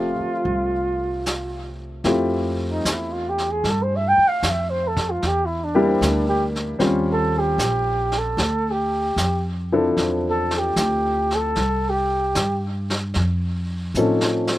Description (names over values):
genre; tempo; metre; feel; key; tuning
jazz ballad; 76 BPM; 4/4; swing 68% on 8ths; F major; A4 = 444 Hz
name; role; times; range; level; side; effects
mellow flugelhorn; melody; 0.0-12.7 s; C4 to G5; -22 LUFS; right 1 dB; none
warm upright piano; accompaniment; 0.0-14.6 s; F3 to E5; -22 LUFS; left 2 dB; slapback echo
upright bass; bass; 0.0-14.6 s; F1 to A2; -25 LUFS; equal; none
vintage brush drum kit; drums; 0.5-14.6 s; brushed snare drum, hi-hat, kick drum, snare drum; -28 LUFS; equal; none
room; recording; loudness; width
little or no reverb; recorded outdoors, with no room sound; -19 LUFS; side -15 dB against mid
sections
0.0-2.1 A section; 2.1-14.6 B section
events
flugelhorn solo 2.1-14.6; drum fill 13.9-14.6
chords
0.0 Fmaj9; 5.2 Em7b5; 6.8 Eb13; 8.4 Dm9; 11.6 C5; 13.1 F7b13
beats
0.47 1.26 | 2.06 2.85 3.65 4.44 | 5.23 6.02 6.81 7.61 | 8.40 9.19 9.98 10.77 | 11.56 12.35 13.14 13.94